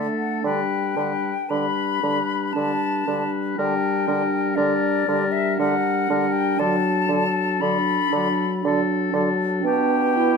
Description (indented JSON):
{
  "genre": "classical, slow romantic movement for wind quintet",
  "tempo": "59 BPM",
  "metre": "3/4",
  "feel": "rubato",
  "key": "unclear",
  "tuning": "A4 = 440 Hz",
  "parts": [
    { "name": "warm oboe", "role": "second line", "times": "0.0-10.4 s", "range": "G4 to B4", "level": "-28 LUFS", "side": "left 5 dB", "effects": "none" },
    { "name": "dark French horn", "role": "accompaniment", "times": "0.0-10.4 s", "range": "F#3 to B3", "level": "-26 LUFS", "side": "left 2 dB", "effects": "none" },
    { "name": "mellow clarinet", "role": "accompaniment", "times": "0.0-10.4 s", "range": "D4 to E4", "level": "-26 LUFS", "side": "right 4 dB", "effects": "none" },
    { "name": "warm bassoon", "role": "bass", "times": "0.0-10.4 s", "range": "B2 to D3", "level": "-26 LUFS", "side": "right 4 dB", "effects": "none" },
    { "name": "silver concert flute", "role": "melody", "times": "0.2-10.4 s", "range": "D5 to B5", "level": "-25 LUFS", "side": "left 6 dB", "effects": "none" }
  ],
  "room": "moderate large studio reverb, RT60 1.3 s",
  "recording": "minimal, uncompressed stereo recording",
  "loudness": "-19 LUFS",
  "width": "side -5 dB against mid",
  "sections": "0.0-10.4 A section",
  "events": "none",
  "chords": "0.4 G/D; 6.6 D; 9.7 G/B"
}